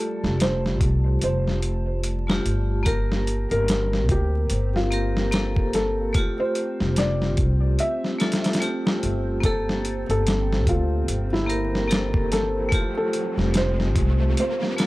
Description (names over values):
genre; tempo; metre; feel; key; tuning
trip hop; 73 BPM; 4/4; swing 58% on 16ths; unclear; A4 = 440 Hz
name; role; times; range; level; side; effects
felt-muted upright piano; melody; 0.0-14.9 s; E4 to E5; -28 LUFS; equal; dub echo
vibraphone with hard mallets; accompaniment; 0.0-14.9 s; A3 to Bb4; -28 LUFS; equal; tremolo, tape echo
warbly tape-like pad; sustained chords; 0.0-14.9 s; G3 to A5; -35 LUFS; equal; chorus, built-in reverb, phaser
upright bass; bass; 0.2-14.3 s; F1 to D2; -24 LUFS; equal; none
dusty soul sampler-style drum kit; drums; 0.2-14.9 s; hi-hat, kick drum, snare drum; -24 LUFS; equal; overdrive
riser; sound effects; 11.7-14.9 s; none; -34 LUFS; equal; none
room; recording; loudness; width
little or no reverb; dry, gritty hardware recording, vinyl crackle; -20 LUFS; side -19 dB against mid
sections
0.0-14.9 A section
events
filter sweep on vibraphone 0.0-14.9; riser 11.7-14.9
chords
0.0 Fadd9; 2.9 Gmadd9; 6.2 Fadd9; 9.4 Gmadd9; 12.7 Fadd9